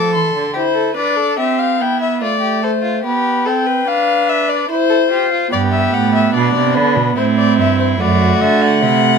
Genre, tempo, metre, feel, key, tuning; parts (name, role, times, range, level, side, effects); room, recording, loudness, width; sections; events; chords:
classical, baroque-style fugue for string quartet; 73 BPM; 3/4; straight; C major; A4 = 436 Hz
dark violin; melody; 0.0-9.2 s; B4 to D6; -17 LUFS; left 7 dB
rich violin; second line; 0.0-9.2 s; D4 to C5; -21 LUFS; left 2 dB
rich cello; bass; 0.0-0.6, 5.5-9.2 s; F#2 to F3; -16 LUFS; right 6 dB
rich viola; accompaniment; 0.6-9.2 s; A3 to F4; -18 LUFS; right 6 dB
moderate studio reverb, RT60 0.6 s; -13 LUFS; side -6 dB against mid
0.6-9.2 A section
0.0 Am; 0.6 C; 2.2 Dm7/A; 3.0 G/B; 4.7 C/E; 5.5 G; 7.2 Am7; 8.0 D/F#